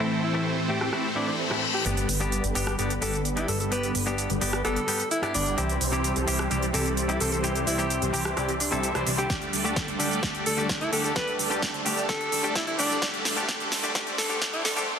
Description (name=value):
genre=EDM, festival progressive house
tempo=129 BPM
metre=4/4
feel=straight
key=G major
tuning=A4 = 439 Hz
part: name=direct-recorded clean electric guitar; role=accompaniment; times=0.0-14.9 s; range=G2 to C5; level=-31 LUFS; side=left 2 dB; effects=sidechain pumping, digital delay
part: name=lush unison pad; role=sustained chords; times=0.0-15.0 s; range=A2 to E6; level=-37 LUFS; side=equal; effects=none
part: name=supersaw chords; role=riff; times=0.0-14.9 s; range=D3 to E5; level=-30 LUFS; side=right 1 dB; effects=phaser, sidechain pumping, low-pass filter, digital delay
part: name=big-room dance drum kit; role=drums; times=0.0-14.9 s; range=cabasa, hi-hat, rim click, snare drum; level=-29 LUFS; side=right 1 dB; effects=low-pass filter on hats, low-pass filter on perc, low-pass filter on snare, low-pass filter on room
part: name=breathy alto saxophone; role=melody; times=0.2-14.8 s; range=D4 to B4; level=-32 LUFS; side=equal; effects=digital delay
part: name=reverse cymbal and riser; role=sound effects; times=1.1-1.9, 12.8-15.0 s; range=none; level=-36 LUFS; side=left 5 dB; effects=none
part: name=fat analog bass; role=bass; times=1.9-14.9 s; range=G1 to D2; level=-32 LUFS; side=equal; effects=sidechain pumping
part: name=electronic kick drum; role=drums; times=9.3-14.5 s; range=none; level=-34 LUFS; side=equal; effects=none
room=moderate lush hall reverb, RT60 2.0 s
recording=dense, heavily limited modern master, high-pass filter, lossy compression artefacts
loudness=-24 LUFS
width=side -7 dB against mid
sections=0.0-1.9 A section; 1.9-15.0 B section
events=reverse cymbal 1.1-1.9; build-up 1.9-15.0; filter sweep on supersaw synth 1.9-15.0; filter sweep 1.9-15.0; drum fill 9.3-14.9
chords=0.0 Am; 1.9 G; 5.6 C; 9.3 Dsus4; 13.0 Am